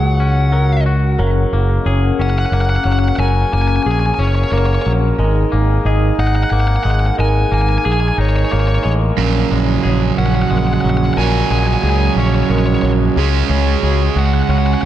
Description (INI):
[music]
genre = rock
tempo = 60 BPM (dotted quarters)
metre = 6/8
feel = straight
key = F# major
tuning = A4 = 440 Hz
[part]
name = bluesy overdriven lead guitar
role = melody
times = 0.0-14.9 s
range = C#5 to G#5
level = -22 LUFS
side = left 1 dB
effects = distortion, analog delay
[part]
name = chorused pulse-width pad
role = sustained chords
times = 0.0-14.9 s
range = C#3 to G#5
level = -24 LUFS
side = left 1 dB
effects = none
[part]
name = felt-muted upright piano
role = arpeggios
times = 0.0-14.5 s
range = G#4 to D#5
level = -26 LUFS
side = right 5 dB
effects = analog delay
[part]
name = twangy electric guitar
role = arpeggios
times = 0.0-14.9 s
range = A#2 to G#4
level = -24 LUFS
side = left 3 dB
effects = analog delay
[part]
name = growling picked electric bass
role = bass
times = 0.0-14.9 s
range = F#1 to C#2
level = -15 LUFS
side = equal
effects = overdrive
[part]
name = cranked stack guitar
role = riff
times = 9.2-14.9 s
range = F#2 to C#4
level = -17 LUFS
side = right 10 dB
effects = overdrive
[sound]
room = light reverb, digital ambience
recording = dark, warm production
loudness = -13 LUFS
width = side -12 dB against mid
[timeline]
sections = 0.0-1.2 A section; 1.2-14.9 B section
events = none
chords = 0.0 C#sus4; 1.2 F#add9; 5.2 G#sus2; 9.2 F#add9/A#; 13.2 C#sus4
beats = 0.20 | 1.20 2.19 | 3.19 4.19 | 5.19 6.19 | 7.19 8.19 | 9.18 10.18 | 11.18 12.18 | 13.17 14.17